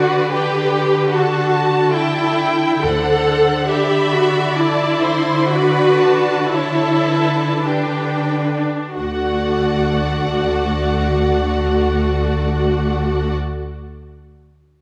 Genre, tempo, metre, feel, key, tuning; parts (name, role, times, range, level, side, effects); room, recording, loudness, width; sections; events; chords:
classical, slow romantic movement for string orchestra; 42-75 BPM; 3/4; rubato; D major; A4 = 443 Hz
rich studio violin section; melody; 0.0-13.3 s; G4 to A5; -28 LUFS; equal
warm symphonic violin section; second line; 0.0-13.3 s; A4 to C6; -27 LUFS; equal
rich studio viola section; accompaniment; 0.0-13.3 s; D4 to A4; -20 LUFS; equal
rich studio cello section; bass; 0.0-13.3 s; D2 to D3; -24 LUFS; equal
rich chamber double bass section; bass; 2.8-3.6, 9.0-13.3 s; D2; -24 LUFS; equal
moderate scoring stage reverb, RT60 1.8 s; -17 LUFS; mono
0.0-9.0 A section; 9.0-12.7 B section
slowing down 1.5-9.0
0.3 A5/D; 2.8 D7; 5.5 G/D; 9.0 D